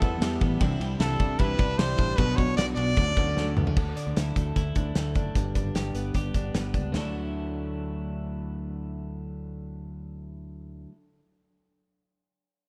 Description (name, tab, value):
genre	jangly indie pop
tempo	151 BPM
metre	4/4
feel	straight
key	D major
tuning	A4 = 440 Hz
part	brilliant trumpet	melody	0.0-3.5 s	A4 to D5	-33 LUFS	equal	plate reverb, delay
part	picked steel-string acoustic guitar	accompaniment	0.0-3.8 s	B2 to E4	-36 LUFS	equal	plate reverb
part	twelve-string electric guitar	arpeggios	0.0-11.0 s	E2 to G4	-34 LUFS	equal	spring reverb, plate reverb
part	fingered electric bass	bass	0.0-10.9 s	F#1 to E2	-35 LUFS	equal	none
part	loose indie drum kit	drums	0.0-7.0 s	crash cymbal, hi-hat, kick drum, ride cymbal, snare drum, toms	-30 LUFS	equal	none
room	light reverb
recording	dark, warm production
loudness	-27 LUFS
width	mono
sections	0.0-3.8 A section; 3.8-6.9 B section; 6.9-10.1 C section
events	drum fill 3.4-3.8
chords	0.0 Em; 0.6 Cadd9; 2.2 Bm; 3.0 Dmaj7; 3.8 Dadd9; 5.3 G; 6.9 Dadd9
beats	0.22 | 0.61 1.00 1.40 1.79 | 2.18 2.58 2.97 3.37 | 3.76 4.16 4.56 4.95 | 5.35 5.75 6.14 6.54 | 6.94 7.34 7.74 8.13 | 8.53 8.93 9.33 9.72